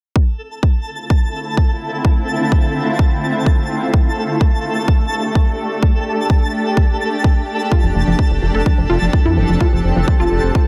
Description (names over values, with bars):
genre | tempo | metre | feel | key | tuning
progressive house | 127 BPM | 4/4 | straight | D minor | A4 = 440 Hz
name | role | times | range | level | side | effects
shimmering ambient pad | sustained chords | 1.1-10.7 s | D3 to A4 | -24 LUFS | equal | chorus, built-in reverb, sidechain pumping
electronic kick drum | drums | 0.2-10.6 s | none | -16 LUFS | equal | none
twinkling granular texture | texture | 0.4-10.7 s | A4 to A5 | -27 LUFS | equal | built-in reverb, sidechain pumping
unison pluck | arpeggios | 7.7-10.7 s | F3 to A4 | -22 LUFS | equal | sidechain pumping, delay
dark detuned saw bass | bass | 7.8-10.5 s | F1 to F2 | -20 LUFS | equal | sidechain pumping
room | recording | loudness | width
light reverb | none | -16 LUFS | mono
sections
0.2-10.7 A section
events
none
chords
0.2 Dm7; 3.9 A7sus4; 7.7 F6